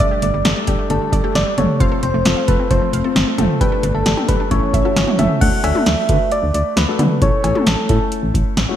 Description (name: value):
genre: synth-pop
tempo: 133 BPM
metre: 4/4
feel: straight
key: unclear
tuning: A4 = 441 Hz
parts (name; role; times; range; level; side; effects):
- soft struck synth lead; melody; 0.0-8.3 s; A4 to F#5; -21 LUFS; equal; chorus, digital delay
- warm baby grand piano; accompaniment; 0.0-8.8 s; A3 to B4; -23 LUFS; left 5 dB; none
- chorused pulse-width pad; sustained chords; 0.0-5.4 s; E3 to D4; -26 LUFS; equal; none
- wide unison pluck; arpeggios; 0.0-5.3 s; D3 to G5; -27 LUFS; right 4 dB; auto-pan, digital delay
- solid FM bass; bass; 0.0-8.7 s; F1 to D3; -20 LUFS; equal; none
- electro analog drum machine; drums; 0.0-8.7 s; cowbell, crash cymbal, hi-hat, kick drum, snare drum, toms; -18 LUFS; equal; gated reverb
room: moderate lush hall reverb, RT60 1.7 s, digital ambience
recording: bright 1980s-style digital production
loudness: -14 LUFS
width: side -10 dB against mid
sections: 0.0-5.4 A section; 5.4-8.8 B section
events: none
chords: 0.0 Gsus2; 1.8 F; 3.6 Gsus2; 4.5 A; 5.4 D; 7.2 A